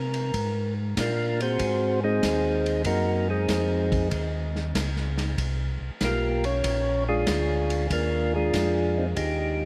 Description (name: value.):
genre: soul jazz organ trio.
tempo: 95 BPM.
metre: 4/4.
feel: swing 69% on 8ths.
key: unclear.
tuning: A4 = 440 Hz.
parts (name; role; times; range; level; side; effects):
percussive tonewheel organ; melody; 0.0-9.7 s; Ab3 to Db5; -28 LUFS; equal; slow rotary speaker.
mellow tonewheel organ; bass; 0.0-9.7 s; Bb1 to C3; -30 LUFS; equal; overdrive, chorus vibrato, slow rotary speaker.
vintage drum kit; drums; 0.1-9.4 s; hi-hat, kick drum, ride cymbal, snare drum; -34 LUFS; equal; none.
room: moderate cathedral reverb, RT60 5.4 s.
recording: in a vast, echoing space.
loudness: -26 LUFS.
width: mono.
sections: 0.0-9.2 A section.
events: tonewheel organ solo 0.0-9.2.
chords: 0.0 Bb9; 1.6 Ab9; 4.1 Eb9; 6.6 Bb7.